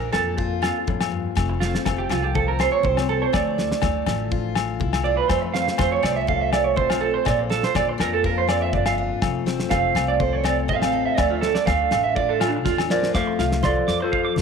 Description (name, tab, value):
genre	highlife guitar band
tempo	122 BPM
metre	4/4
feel	straight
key	F major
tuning	A4 = 441 Hz
part	picked steel-string acoustic guitar	accompaniment	0.0-14.4 s	F2 to A4	-28 LUFS	left 13 dB	none
part	electric guitar through a small old amp	arpeggios	0.0-14.3 s	D4 to D6	-23 LUFS	right 10 dB	lush chorus, tape echo
part	upright bass	bass	0.0-14.4 s	F1 to F2	-27 LUFS	left 1 dB	none
part	damped 70s drum kit	drums	0.1-14.4 s	kick drum, snare drum	-28 LUFS	equal	none
part	agogo bells	percussion	0.1-12.9 s	none	-29 LUFS	left 14 dB	none
part	congas	percussion	0.1-14.4 s	none	-32 LUFS	left 9 dB	none
part	mellow electric guitar	melody	12.9-14.4 s	A4 to F5	-23 LUFS	right 3 dB	none
part	dark trombone	second line	12.9-14.4 s	F3 to A3	-26 LUFS	left 12 dB	none
room	moderate plate reverb, RT60 2.5 s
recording	1960s-style stereo with parts hard left and right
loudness	-19 LUFS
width	side -6 dB against mid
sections	0.0-13.1 A section; 13.1-14.4 B section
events	clean electric guitar solo 0.0-13.1; drum fill 12.7-13.1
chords	0.0 Bb; 1.4 F; 3.3 Dmadd9; 5.3 F; 7.3 Bb; 9.2 F; 11.2 Dmadd9; 13.1 F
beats	0.38 0.87 | 1.36 1.86 2.35 2.84 | 3.33 3.82 4.31 4.81 | 5.30 5.79 6.28 6.77 | 7.26 7.75 8.24 8.73 | 9.22 9.71 10.20 10.69 | 11.18 11.67 12.16 12.65 | 13.14 13.63 14.12